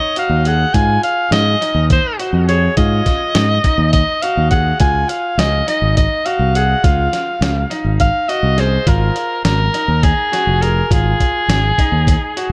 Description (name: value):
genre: progressive instrumental, band music in an uneven meter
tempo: 207 BPM (eighths)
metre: 7/8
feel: straight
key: Ab mixolydian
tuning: A4 = 441 Hz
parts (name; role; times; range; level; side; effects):
- breathy soprano saxophone; melody; 0.0-12.5 s; Ab4 to Ab5; -20 LUFS; equal; tape echo
- bright baby grand piano; arpeggios; 0.0-12.5 s; Eb4 to Ab4; -26 LUFS; equal; tape echo
- lo-fi sampler-style drum kit; drums; 0.2-12.5 s; hi-hat, kick drum, snare drum; -20 LUFS; equal; none
- overdriven fingered electric bass; bass; 0.3-12.5 s; F1 to Ab2; -18 LUFS; equal; none
room: light reverb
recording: echo-heavy mix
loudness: -15 LUFS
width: mono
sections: 0.0-12.5 A section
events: none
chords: 0.0 Gb5; 0.7 Ab5; 4.8 Dbadd9; 8.9 Ab5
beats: 0.16 0.45 | 0.74 1.03 1.32 1.61 1.90 2.19 2.48 | 2.77 3.06 3.35 3.64 3.93 4.22 4.51 | 4.80 5.09 5.38 5.67 5.96 6.25 6.54 | 6.83 7.12 7.42 7.71 8.00 8.29 8.58 | 8.87 9.16 9.45 9.74 10.03 10.32 10.61 | 10.90 11.19 11.48 11.77 12.06 12.35